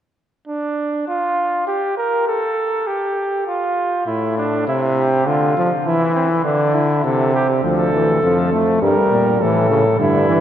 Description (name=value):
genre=classical, imitative canzona for brass ensemble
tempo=101 BPM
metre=3/4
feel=straight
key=D minor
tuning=A4 = 443 Hz
part: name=warm flugelhorn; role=second line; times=0.5-10.4 s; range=C4 to Bb4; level=-19 LUFS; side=right 1 dB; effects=none
part: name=bright trombone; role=accompaniment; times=4.1-10.4 s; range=A2 to A3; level=-17 LUFS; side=equal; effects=none
part: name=warm bass trombone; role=bass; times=7.6-10.4 s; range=D2 to Bb2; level=-17 LUFS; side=equal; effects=none
room=wet cathedral reverb, RT60 4.4 s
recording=none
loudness=-15 LUFS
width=side -10 dB against mid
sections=0.5-10.4 A section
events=none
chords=0.5 N.C.; 4.1 Am; 5.3 Dm; 5.9 Cadd9 (rootless); 7.0 Am/C; 7.6 Dm; 8.8 Gm; 9.4 A